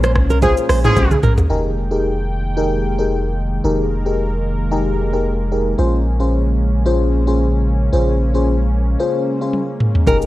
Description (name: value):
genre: afrobeats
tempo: 112 BPM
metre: 4/4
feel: swing 55% on 16ths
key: F minor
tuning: A4 = 439 Hz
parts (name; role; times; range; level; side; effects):
- warm analog pad; sustained chords; 0.0-10.3 s; Bb2 to G5; -24 LUFS; right 1 dB; chorus
- nylon-string guitar; riff; 0.0-1.3, 10.1-10.2 s; Ab4 to C5; -20 LUFS; right 4 dB; ping-pong delay
- punchy sub bass; bass; 0.0-10.3 s; F1 to C2; -18 LUFS; equal; none
- afro-pop drum kit; drums; 0.0-1.5, 9.5-10.3 s; hi-hat, kick drum, rim click, shaker, toms; -17 LUFS; equal; none
- warm horn section; second line; 0.4-1.2 s; F3 to Ab4; -21 LUFS; left 1 dB; none
- FM electric piano with soft pad layer; accompaniment; 0.4-10.3 s; Db4 to C5; -20 LUFS; left 2 dB; chorus, phaser
- congas and bongos; percussion; 0.4-1.5, 10.1-10.2 s; none; -27 LUFS; left 3 dB; none
room: light reverb, digital ambience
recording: worn, warbling old tape, cassette tape, warbly pitch drift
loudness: -15 LUFS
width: side -16 dB against mid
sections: 0.0-1.5 A section; 1.5-10.1 B section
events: band accent 0.0-1.5; drum fill 1.0-1.5, 9.5-10.1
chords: 0.0 Bbm9; 1.5 Fm11; 5.8 Bbm9